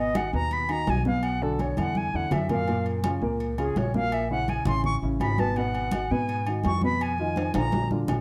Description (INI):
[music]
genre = Afro-Cuban jazz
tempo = 166 BPM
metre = 4/4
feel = straight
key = unclear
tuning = A4 = 440 Hz
[part]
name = bright reedy silver concert flute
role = melody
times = 0.0-7.9 s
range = Ab4 to C#6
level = -32 LUFS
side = equal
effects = slapback echo
[part]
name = warm upright piano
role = accompaniment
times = 0.0-8.2 s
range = Bb2 to Cb5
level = -32 LUFS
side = equal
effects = none
[part]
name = upright bass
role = bass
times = 0.0-8.2 s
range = Ab1 to Ab2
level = -32 LUFS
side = equal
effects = none
[part]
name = congas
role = percussion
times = 0.1-8.2 s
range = none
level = -34 LUFS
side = equal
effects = none
[part]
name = timbales and agogo bells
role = percussion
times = 0.2-8.2 s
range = none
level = -36 LUFS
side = equal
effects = none
[sound]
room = light reverb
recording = dry, close 1970s-style studio recording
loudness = -26 LUFS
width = mono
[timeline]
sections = 0.0-8.2 A section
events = flute solo 0.0-8.2; drum fill 1.8-2.7, 7.4-8.2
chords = 0.0 Abm7; 1.2 Bm; 2.0 Esus2; 2.7 Gbmaj7; 4.1 Bbdim; 4.8 Aadd9; 5.6 Abm7; 7.0 Fm7b5